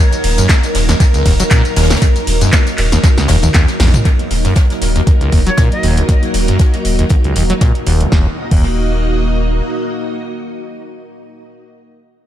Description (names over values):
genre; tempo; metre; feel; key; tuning
acid house; 118 BPM; 4/4; swing 55% on 16ths; Eb minor; A4 = 442 Hz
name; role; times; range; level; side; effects
string machine, full ensemble; sustained chords; 0.0-11.5 s; Gb3 to Eb5; -19 LUFS; equal; ensemble chorus, sidechain pumping
acid bass, saw; riff; 0.0-8.6 s; Db2 to Gb3; -16 LUFS; equal; lush chorus, tape echo
electro analog drum machine; drums; 0.1-8.7 s; crash cymbal, handclaps, hi-hat, ride cymbal, snare drum, tambourine, toms; -19 LUFS; equal; analog delay
warm sub bass; bass; 0.2-9.6 s; Eb1 to Bb1; -16 LUFS; equal; sidechain pumping
jazz brush drum kit; drums; 0.2-8.1 s; hi-hat, snare drum; -26 LUFS; left 2 dB; high-pass filter on hats, high-pass filter on snare, high-pass filter on room
electronic kick drum; drums; 0.5-8.7 s; none; -11 LUFS; equal; overdrive
breathy bright jazz flute; melody; 5.5-5.9 s; Db5 to Eb5; -25 LUFS; equal; tape echo
room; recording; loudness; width
little or no reverb; echo-heavy mix; -10 LUFS; side -12 dB against mid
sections
0.0-4.1 A section; 4.1-8.1 B section; 8.1-12.2 C section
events
drop 0.0-4.1; drum fill 3.0-4.1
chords
0.0 Ebm